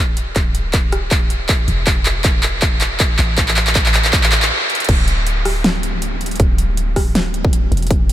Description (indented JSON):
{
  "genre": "future bass",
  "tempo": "159 BPM",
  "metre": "4/4",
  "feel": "swing 56% on 16ths, half-time",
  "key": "unclear",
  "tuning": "A4 = 441 Hz",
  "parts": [
    { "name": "warm 808-style bass", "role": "bass", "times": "0.0-8.1 s", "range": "D1 to A1", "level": "-21 LUFS", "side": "equal", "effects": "sidechain pumping" },
    { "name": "pop drum kit", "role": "drums", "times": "0.2-8.1 s", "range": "crash cymbal, handclaps, hi-hat, rim click, snare drum", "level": "-17 LUFS", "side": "equal", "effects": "overdrive, high-pass filter on hats, high-pass filter on snare, high-pass filter on cymbals, high-pass filter on room" },
    { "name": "electronic kick drum", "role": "drums", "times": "0.4-8.0 s", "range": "none", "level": "-16 LUFS", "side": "equal", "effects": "none" }
  ],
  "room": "moderate huge ambient reverb, RT60 9.0 s",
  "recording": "dreamy mix soaked in reverb",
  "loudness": "-14 LUFS",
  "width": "side -13 dB against mid",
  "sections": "0.0-4.9 A section; 4.9-8.1 B section",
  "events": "build-up 0.0-4.9; drum fill 0.0-4.5, 4.7; stop 4.5-4.9; drop 4.9-8.1",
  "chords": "none"
}